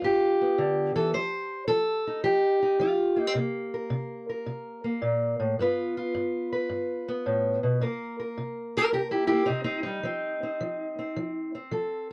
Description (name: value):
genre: blues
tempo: 108 BPM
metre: 4/4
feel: swing 68% on 8ths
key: unclear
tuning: A4 = 440 Hz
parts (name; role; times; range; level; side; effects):
- fingerpicked steel-string acoustic guitar; solo; 0.0-12.1 s; G2 to C5; -28 LUFS; equal; none
room: moderate booth ambience, RT60 0.2 s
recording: dark, warm production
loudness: -28 LUFS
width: mono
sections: 0.0-7.8 A section; 7.8-12.1 B section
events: steel-string acoustic guitar solo 7.8-12.1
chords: 0.0 G7; 1.1 F7; 3.4 Bbsus2; 5.6 G7; 7.8 C7; 10.0 F7